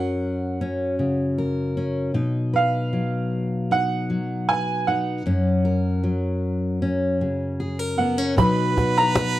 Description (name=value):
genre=acoustic folk duo or small band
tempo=77 BPM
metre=4/4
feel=straight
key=F# major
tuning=A4 = 438 Hz
part: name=bright upright piano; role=melody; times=0.0-9.4 s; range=E#5 to B5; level=-24 LUFS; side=right 3 dB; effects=none
part: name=fingerpicked steel-string acoustic guitar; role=accompaniment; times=0.0-9.4 s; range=F#2 to B4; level=-22 LUFS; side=left 1 dB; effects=none
part: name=clear harmonica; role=second line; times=8.4-9.4 s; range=B4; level=-25 LUFS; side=right 5 dB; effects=none
part: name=cajon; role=percussion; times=8.4-9.3 s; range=none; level=-22 LUFS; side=equal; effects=none
room=light reverb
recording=dry, close 1970s-style studio recording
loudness=-20 LUFS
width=side -14 dB against mid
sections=0.0-8.4 A section; 8.4-9.4 B section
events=none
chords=0.0 F#; 2.2 B; 5.3 F#; 8.4 B